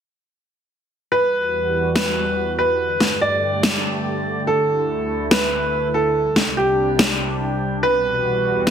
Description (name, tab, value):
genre	heavy wobble dubstep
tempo	143 BPM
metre	4/4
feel	half-time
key	E minor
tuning	A4 = 440 Hz
part	clear baby grand piano	melody	1.1-8.7 s	G4 to D5	-20 LUFS	right 1 dB	digital delay
part	supersaw pad	sustained chords	1.1-8.7 s	C2 to G4	-24 LUFS	equal	low-pass filter
part	electronic snare drum	drums	2.0-8.7 s	none	-19 LUFS	left 1 dB	none
room	moderate plate reverb, RT60 1.6 s, digital ambience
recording	dense, heavily limited modern master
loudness	-17 LUFS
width	side -8 dB against mid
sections	1.1-8.7 A section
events	filter sweep on supersaw synth 1.1-8.7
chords	1.1 Emadd9; 2.8 Gsus2; 4.5 Dsus2; 6.2 Csus2; 7.8 Emadd9